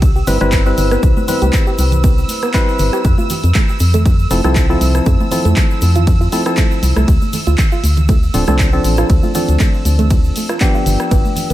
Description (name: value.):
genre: deep house.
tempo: 119 BPM.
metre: 4/4.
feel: swing 54% on 16ths.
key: unclear.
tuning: A4 = 435 Hz.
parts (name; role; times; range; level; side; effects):
organ-like FM bass; bass; 0.0-11.5 s; D1 to F2; -14 LUFS; equal; sidechain pumping.
electronic kick drum; drums; 0.0-11.2 s; none; -14 LUFS; equal; none.
punchy analog drum machine; drums; 0.0-11.5 s; handclaps, hi-hat, ride cymbal, rim click; -24 LUFS; equal; none.
egg shaker; percussion; 0.0-11.5 s; none; -31 LUFS; left 1 dB; none.
analog string pad; texture; 0.0-11.5 s; E6; -28 LUFS; right 6 dB; ensemble chorus.
soft round pluck; arpeggios; 0.2-11.5 s; A3 to G4; -24 LUFS; right 4 dB; chorus, cassette tape, sidechain pumping, tape echo.
percussive organ stab; stabs; 0.3-11.5 s; F3 to B4; -19 LUFS; left 1 dB; chorus, sidechain pumping, ping-pong delay.
congas; percussion; 0.3-11.5 s; none; -25 LUFS; right 3 dB; none.
room: light reverb.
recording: none.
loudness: -11 LUFS.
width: side -14 dB against mid.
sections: 0.0-11.5 A section.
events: none.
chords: 0.0 Cmaj7; 3.0 Fmaj7; 7.1 Dm7; 10.9 G7.